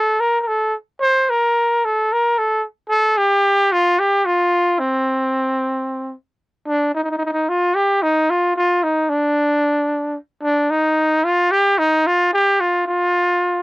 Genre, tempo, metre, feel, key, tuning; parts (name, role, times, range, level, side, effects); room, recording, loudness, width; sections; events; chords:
turkish; free time; C makam hicaz; A4 = 444 Hz
breathy trumpet; solo; 0.0-13.6 s; C4 to C5; -15 LUFS; equal
light reverb; dry, close 1970s-style studio recording; -15 LUFS; side -21 dB against mid
0.0-6.7 A section; 6.7-13.6 B section